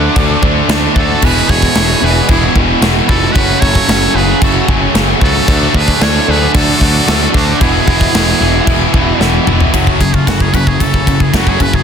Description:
heavy metal; 113 BPM; 4/4; straight; F# minor; A4 = 441 Hz
trumpet with metal mute; melody; 0.0-11.8 s; E#4 to F#5; -18 LUFS; right 2 dB; tape echo
high-gain lead guitar; second line; 0.0-9.2 s; D4 to D5; -22 LUFS; right 4 dB; distortion
distorted electric guitar; riff; 0.0-11.8 s; E2 to D4; -18 LUFS; right 11 dB; overdrive
heavy high-gain guitar; riff; 0.0-11.8 s; E2 to D4; -18 LUFS; left 13 dB; distortion
overdriven electric guitar; riff; 0.0-11.8 s; F#2 to E4; -18 LUFS; right 1 dB
modern bright picked electric bass; bass; 0.0-11.8 s; E1 to D2; -16 LUFS; equal
tight metal drum kit; drums; 0.2-11.8 s; china cymbal, crash cymbal, kick drum, ride cymbal, snare drum, toms; -14 LUFS; equal
small room ambience; dense, heavily limited modern master; -9 LUFS; side -7 dB against mid
0.0-9.7 A section; 9.7-11.8 B section
drum fill 9.2-9.7; muted trumpet solo 9.7-11.8
0.0 D; 1.2 E; 3.4 F#m; 5.5 D; 7.6 E; 9.7 F#m
0.16 0.70 | 1.23 1.76 2.29 2.83 | 3.36 3.89 4.42 4.95 | 5.49 6.02 6.55 7.08 | 7.61 8.14 8.68 9.21 | 9.74 10.28 10.81 11.34

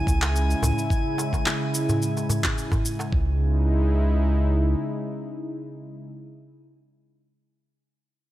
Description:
organic downtempo; 108 BPM; 4/4; straight; C# minor; A4 = 440 Hz
warm analog pad; sustained chords; 0.0-6.1 s; C#3 to E4; -28 LUFS; equal; chorus, sidechain pumping
round analog bass; bass; 0.0-4.8 s; C#2; -21 LUFS; equal; sidechain pumping
drifting glass-harmonics texture; texture; 0.0-3.1 s; G#5; -34 LUFS; left 3 dB; chorus, built-in reverb
electronic kick drum; drums; 0.1-3.2 s; -25 LUFS; equal
electronic shaker and handclaps; drums; 0.1-3.1 s; -28 LUFS; equal
darbuka; percussion; 0.1-3.1 s; -29 LUFS; right 1 dB
light reverb, digital ambience; -21 LUFS; side -14 dB against mid
0.0-3.1 A section; 3.1-5.3 B section
0.0 C#m
0.35 | 0.90 1.46 2.01 2.57 | 3.12 3.68 4.24 4.79

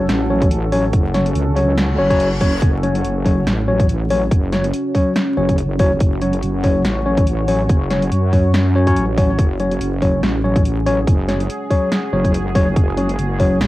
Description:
deep dubstep; 142 BPM; 4/4; swing 55% on 16ths, half-time; F# minor; A4 = 441 Hz
deep dark ambient pad; sustained chords; 0.0-13.7 s; C#4 to C#5; -24 LUFS; right 1 dB; chorus, built-in reverb, vintage 12-bit sampler grit, cassette tape
tine electric piano; stabs; 0.0-13.6 s; F#3 to C#5; -19 LUFS; left 1 dB; cassette tape, dub echo
wobble bass; bass; 0.0-13.7 s; F#1 to F#2; -19 LUFS; equal; chorus, tube saturation
deep house drum kit; drums; 0.1-13.7 s; hi-hat, snare drum; -23 LUFS; equal; overdrive, cassette tape
electronic kick drum; drums; 0.4-13.5 s; -16 LUFS; equal; cassette tape
reverse cymbal; sound effects; 1.9-2.6 s; -29 LUFS; left 2 dB
light reverb; home recording on cassette, vinyl crackle; -14 LUFS; side -17 dB against mid
0.0-13.7 A section
reverse cymbal 1.9-2.6
0.0 F#5
0.09 0.51 | 0.93 1.35 1.78 2.20 | 2.62 3.05 3.47 3.89 | 4.31 4.74 5.16 5.58 | 6.00 6.43 6.85 7.27 | 7.69 8.12 8.54 8.96 | 9.38 9.81 10.23 10.65 | 11.07 11.50 11.92 12.34 | 12.76 13.19 13.61

